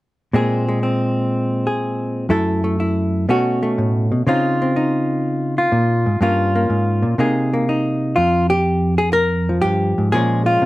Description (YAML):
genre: solo jazz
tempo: 123 BPM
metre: 4/4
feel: swing 69% on 8ths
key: F minor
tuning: A4 = 440 Hz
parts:
  - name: hollow-body jazz guitar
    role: solo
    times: 0.3-10.7 s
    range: F2 to Bb4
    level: -16 LUFS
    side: equal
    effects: none
room: light reverb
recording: close, detailed microphones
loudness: -16 LUFS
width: side -18 dB against mid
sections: 0.3-8.2 A section; 8.2-10.7 B section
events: none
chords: 0.3 Bbsus2; 2.3 Gbm7; 3.3 Bsus2; 4.3 Dbmaj9; 6.2 Gm7b5; 7.2 Abadd9/C; 8.2 Fmadd9; 10.1 Bbm7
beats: | 0.34 0.83 1.32 1.81 | 2.30 2.79 3.28 3.77 | 4.25 4.74 5.23 5.72 | 6.21 6.70 7.19 7.68 | 8.17 8.66 9.15 9.63 | 10.12 10.61